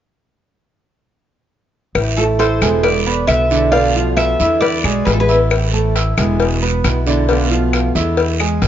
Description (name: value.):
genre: latin, Cuban son and guajira.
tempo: 135 BPM.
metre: 4/4.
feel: straight.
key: A harmonic minor.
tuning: A4 = 437 Hz.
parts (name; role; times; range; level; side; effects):
upright bass; bass; 1.9-8.7 s; E1 to E2; -18 LUFS; equal; none.
picked acoustic archtop guitar; accompaniment; 2.0-8.7 s; B2 to F4; -22 LUFS; left 1 dB; none.
claves; percussion; 2.0-8.6 s; none; -24 LUFS; left 6 dB; none.
cowbell; percussion; 2.0-8.7 s; none; -21 LUFS; left 6 dB; none.
guiro; percussion; 2.0-8.7 s; none; -27 LUFS; right 7 dB; none.
Cuban tres; melody; 2.2-5.4 s; A4 to F5; -18 LUFS; equal; none.
nylon-string guitar; second line; 2.2-5.4 s; F4 to D5; -23 LUFS; right 4 dB; none.
clear concert grand piano; arpeggios; 2.2-8.7 s; D3 to E6; -20 LUFS; right 4 dB; none.
room: light reverb.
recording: nothing above 7.5 kHz.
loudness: -13 LUFS.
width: side -10 dB against mid.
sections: 2.0-8.7 A section.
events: none.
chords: 2.0 Am; 2.8 E7; 3.7 Bm7b5; 4.6 E7; 5.5 Am; 6.4 E7; 7.3 Bm7b5; 8.2 E7.